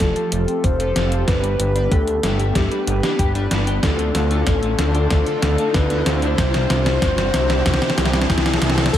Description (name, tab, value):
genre	synthwave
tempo	94 BPM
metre	4/4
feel	straight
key	unclear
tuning	A4 = 440 Hz
part	soft octave-layered synth lead	melody	0.0-9.0 s	E4 to C5	-23 LUFS	left 2 dB	chorus, digital delay
part	warm analog pad	sustained chords	0.0-9.0 s	C3 to A4	-28 LUFS	right 1 dB	chorus, sidechain pumping
part	clean electric guitar	riff	0.0-9.0 s	A2 to G4	-31 LUFS	left 2 dB	none
part	chorused polysynth	stabs	0.0-9.0 s	C3 to E5	-28 LUFS	left 2 dB	none
part	fat analog bass	bass	0.0-9.0 s	F1 to D2	-21 LUFS	equal	tube saturation, sidechain pumping
part	electronic kick drum	drums	0.0-9.0 s	none	-21 LUFS	equal	overdrive
part	gated 80s digital drum machine	drums	0.0-9.0 s	crash cymbal, hi-hat, snare drum, tambourine	-23 LUFS	equal	gated reverb, gated reverb snare, overdrive
part	riser and sub drop	sound effects	2.2-9.0 s	none	-30 LUFS	right 1 dB	none
part	FM electric piano with soft pad layer	second line	8.9-9.0 s	A4	-20 LUFS	left 7 dB	chorus, tremolo, phaser
room	moderate lush hall reverb, RT60 2.1 s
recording	none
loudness	-16 LUFS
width	side -11 dB against mid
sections	0.0-8.9 A section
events	drum fill 0.0-8.9; riser 2.2-8.9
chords	0.0 Fadd9; 1.3 G; 3.8 Dm; 6.4 Cadd9